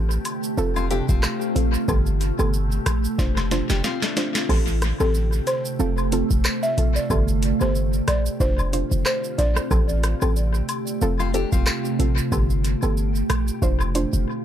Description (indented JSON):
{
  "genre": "dancehall",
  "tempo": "92 BPM",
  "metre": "4/4",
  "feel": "swing 56% on 16ths",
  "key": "unclear",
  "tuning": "A4 = 440 Hz",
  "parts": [
    { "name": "glassy FM pad", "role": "sustained chords", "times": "0.0-14.4 s", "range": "B2 to G4", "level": "-27 LUFS", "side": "right 2 dB", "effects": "ensemble chorus, built-in reverb" },
    { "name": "warm 808-style bass", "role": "bass", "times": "0.0-14.3 s", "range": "F1 to A1", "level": "-22 LUFS", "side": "equal", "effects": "none" },
    { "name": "booming analog drum machine", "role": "drums", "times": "0.1-14.3 s", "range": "crash cymbal, handclaps, hi-hat, kick drum, rim click, shaker, snare drum", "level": "-23 LUFS", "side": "equal", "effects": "analog delay" },
    { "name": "cabasa and woodblock", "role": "percussion", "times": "0.3-14.1 s", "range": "none", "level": "-34 LUFS", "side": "left 3 dB", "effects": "analog delay" },
    { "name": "soft round pluck", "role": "accompaniment", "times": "0.6-14.1 s", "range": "B3 to C5", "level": "-28 LUFS", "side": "right 2 dB", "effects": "chorus, sidechain pumping" },
    { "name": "nylon-string guitar", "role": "arpeggios", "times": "0.8-4.5, 11.2-12.3 s", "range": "A3 to G4", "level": "-31 LUFS", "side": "left 8 dB", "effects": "analog delay" },
    { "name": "buzzing marimba with soft mallets", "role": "melody", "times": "5.0-9.5 s", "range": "A4 to E5", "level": "-28 LUFS", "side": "equal", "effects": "analog delay" }
  ],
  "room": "little or no reverb",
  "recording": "echo-heavy mix",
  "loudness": "-19 LUFS",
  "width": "side -10 dB against mid",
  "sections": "0.0-14.4 A section",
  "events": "drum fill 3.2-4.5; break 14.3",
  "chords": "0.0 Am7; 0.6 F; 1.9 Gadd9; 3.2 Dm7/F; 4.5 Am7; 5.8 F; 7.1 Gadd9; 8.4 Dm7/F; 9.7 Am7; 11.0 F; 12.3 Gadd9; 13.6 Dm7/F"
}